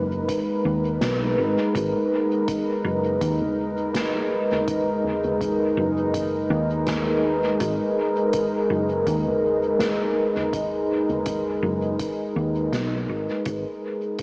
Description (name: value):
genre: ambient dub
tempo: 82 BPM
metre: 4/4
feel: swing 55% on 16ths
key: G# minor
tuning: A4 = 440 Hz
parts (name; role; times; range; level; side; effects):
- deep dark ambient pad; sustained chords; 0.0-14.2 s; G#3 to B4; -22 LUFS; equal; chorus, built-in reverb, cassette tape
- hollow-body short-scale fingered electric bass; bass; 0.0-13.6 s; F#1 to D#2; -26 LUFS; equal; none
- electronic kick drum; drums; 0.3-14.2 s; none; -35 LUFS; equal; small room reverb, cassette tape
- soft-mallet drum kit; drums; 0.3-14.2 s; hi-hat, snare drum, toms; -32 LUFS; equal; small room reverb, cassette tape, dub echo
room: moderate spring reverb, RT60 2.4 s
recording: home recording on cassette, small speaker sound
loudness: -21 LUFS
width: side -28 dB against mid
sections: 0.0-14.2 A section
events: fade-out 11.5-14.2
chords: 0.0 G#m